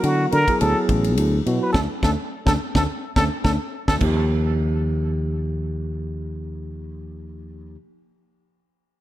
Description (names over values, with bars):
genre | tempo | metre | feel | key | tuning
electric jazz fusion | 105 BPM | 4/4 | swing 54% on 16ths | unclear | A4 = 441 Hz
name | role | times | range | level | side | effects
trumpet with plunger mute | melody | 0.0-3.9 s | F#4 to Cb5 | -24 LUFS | equal | ping-pong delay
tine electric piano | accompaniment | 0.0-7.8 s | F3 to Ab4 | -26 LUFS | right 1 dB | fast stereo tremolo
fretless electric bass | bass | 0.0-7.8 s | A1 to D3 | -23 LUFS | equal | none
tight funk drum kit | drums | 0.0-4.2 s | crash cymbal, kick drum, ride cymbal, snare drum | -25 LUFS | equal | gated reverb
room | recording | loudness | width
light reverb, small room ambience | bright 1980s-style digital production | -19 LUFS | side -14 dB against mid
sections
0.0-4.0 A section; 4.0-6.3 B section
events
muted trumpet solo 0.0-4.0; band accent 1.7-4.0; drum fill 3.7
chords
0.0 Dmaj9; 4.0 Ebadd9